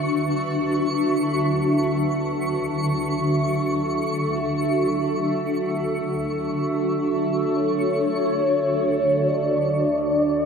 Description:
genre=ambient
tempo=free time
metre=none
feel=none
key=unclear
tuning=A4 = 442 Hz
part: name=granular cloud pad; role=sustained chords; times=0.0-10.5 s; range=D3 to E5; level=-21 LUFS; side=equal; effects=built-in reverb
part: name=twinkling granular texture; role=texture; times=0.0-9.3 s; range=C#6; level=-31 LUFS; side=right 1 dB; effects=built-in reverb
part: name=warm velvety synth lead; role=melody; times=7.6-10.5 s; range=C#5 to D5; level=-22 LUFS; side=equal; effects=chorus, ping-pong delay
part: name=warm sub bass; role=bass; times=9.3-10.5 s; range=D2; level=-48 LUFS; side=left 1 dB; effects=none
room=wet cathedral reverb, RT60 5.4 s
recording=dreamy mix soaked in reverb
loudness=-20 LUFS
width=side -6 dB against mid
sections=0.0-9.3 A section; 9.3-10.5 A section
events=filter sweep on ambient pad 9.3-10.5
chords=0.0 Aadd9/D; 9.3 Dsus2

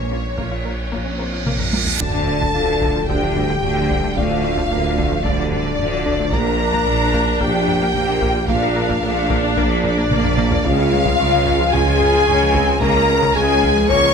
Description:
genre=cinematic, hybrid orchestral and electronic film score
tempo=111 BPM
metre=4/4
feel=straight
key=unclear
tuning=A4 = 441 Hz
part: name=warm studio violin section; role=melody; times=0.0-14.1 s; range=Db5 to C#6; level=-24 LUFS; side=left 2 dB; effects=none
part: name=rich symphonic violin section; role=second line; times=0.0-14.1 s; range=Db5 to C#6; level=-24 LUFS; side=left 1 dB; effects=none
part: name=clear symphonic cello section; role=bass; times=0.0-14.1 s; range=Bb2 to D3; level=-26 LUFS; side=right 1 dB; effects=none
part: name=rich symphonic double bass section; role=bass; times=0.0-14.1 s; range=Bb1 to D2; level=-26 LUFS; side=right 3 dB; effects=none
part: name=saturated sub bass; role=bass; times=0.0-14.1 s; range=D1 to C#2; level=-27 LUFS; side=equal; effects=none
part: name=reverse cymbal and sub drop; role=sound effects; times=0.6-4.2 s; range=none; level=-27 LUFS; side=right 2 dB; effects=none
part: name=dark grand piano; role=texture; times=0.0-14.1 s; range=G3 to F5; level=-33 LUFS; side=left 4 dB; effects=none
part: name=rich symphonic viola section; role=accompaniment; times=0.1-14.1 s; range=F3 to F4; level=-25 LUFS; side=right 1 dB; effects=none
part: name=analog pluck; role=arpeggios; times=0.1-14.1 s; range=C#3 to Bb4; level=-28 LUFS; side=left 2 dB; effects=chorus
part: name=taiko ensemble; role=drums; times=0.4-14.1 s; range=none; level=-26 LUFS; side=equal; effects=none
part: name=dark French horn section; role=sustained chords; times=2.0-14.1 s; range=D4 to C#5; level=-22 LUFS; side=left 4 dB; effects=none
part: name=clear tuba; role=bass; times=2.0-14.1 s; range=Bb1 to D2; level=-25 LUFS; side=right 5 dB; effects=none
room=light reverb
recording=none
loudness=-15 LUFS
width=side -6 dB against mid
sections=0.0-2.0 A section; 2.0-14.1 B section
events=reverse cymbal 0.6-2.0; drum fill 1.5-2.0, 10.1-10.7; impact 2.0-4.2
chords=0.0 Bbm; 2.0 Dm; 6.3 Bb; 10.7 C#

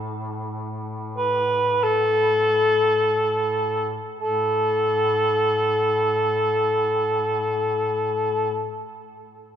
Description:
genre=caucasian folk, Caucasian lament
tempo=free time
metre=none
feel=none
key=unclear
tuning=A4 = 436 Hz
part: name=warm duduk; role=drone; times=0.0-8.8 s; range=A2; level=-31 LUFS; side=left 1 dB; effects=none
part: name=mellow cor anglais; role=melody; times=1.2-8.8 s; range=A4 to B4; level=-20 LUFS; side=equal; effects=none
room=moderate cathedral reverb, RT60 4.1 s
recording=minimal, uncompressed stereo recording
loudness=-20 LUFS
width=side -9 dB against mid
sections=0.0-4.2 A section; 4.2-9.4 B section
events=slowing down 0.0-4.2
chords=none

